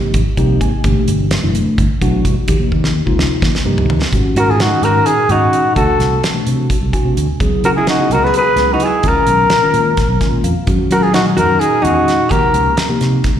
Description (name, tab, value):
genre	electric jazz fusion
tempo	256 BPM (eighths)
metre	7/8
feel	straight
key	unclear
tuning	A4 = 440 Hz
part	mellow tine electric piano	accompaniment	0.0-13.3 s	Bb2 to Ab5	-18 LUFS	left 1 dB	phaser, plate reverb, slapback echo
part	fingered electric bass	bass	0.0-13.4 s	F#1 to Gb3	-18 LUFS	equal	none
part	damped 70s drum kit	drums	0.1-13.4 s	hi-hat, kick drum, snare drum, toms	-18 LUFS	equal	none
part	breathy trumpet	melody	4.4-12.8 s	Gb4 to Cb5	-14 LUFS	left 1 dB	plate reverb, slapback echo, tape echo
part	hollow-body jazz guitar	second line	4.4-12.8 s	Eb4 to Ab4	-20 LUFS	right 1 dB	plate reverb, slapback echo
room	light reverb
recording	live gig heard through the venue's PA, recital hall reverb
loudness	-11 LUFS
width	side -9 dB against mid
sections	0.0-4.1 A section; 4.1-13.4 B section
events	tine electric piano fill 0.1-0.8, 6.7-7.4, 10.0-10.7, 13.2; drum fill 2.7-4.1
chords	0.0 Abmaj9; 0.8 Gmaj9; 2.5 Eb69; 4.1 Ab9sus4; 5.8 D7#11; 7.4 Dbm7; 9.0 Db13; 10.7 Gb69; 12.3 Eb13